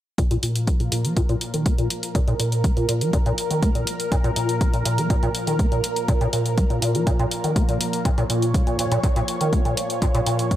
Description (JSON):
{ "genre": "acid house", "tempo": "122 BPM", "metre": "4/4", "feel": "straight", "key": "Bb minor", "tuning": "A4 = 440 Hz", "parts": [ { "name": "lush unison pad", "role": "sustained chords", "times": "0.5-10.6 s", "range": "Bb2 to Db5", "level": "-27 LUFS", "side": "right 1 dB", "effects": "chorus, phaser, sidechain pumping" }, { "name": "liquid acid bass", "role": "riff", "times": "0.2-10.6 s", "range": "Bb2 to Bb3", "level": "-23 LUFS", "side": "equal", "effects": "tube saturation, lush chorus, cassette tape, analog delay" }, { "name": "electronic hi-hat", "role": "drums", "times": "0.2-10.6 s", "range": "none", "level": "-29 LUFS", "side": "left 1 dB", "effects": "none" }, { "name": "electronic kick drum", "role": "drums", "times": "0.2-10.6 s", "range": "none", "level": "-21 LUFS", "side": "equal", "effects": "none" } ], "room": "light reverb, digital ambience", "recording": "none", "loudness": "-19 LUFS", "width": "side -12 dB against mid", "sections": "0.2-10.6 A section", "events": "filter sweep on acid bass 0.2-10.6", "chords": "0.2 Bb5" }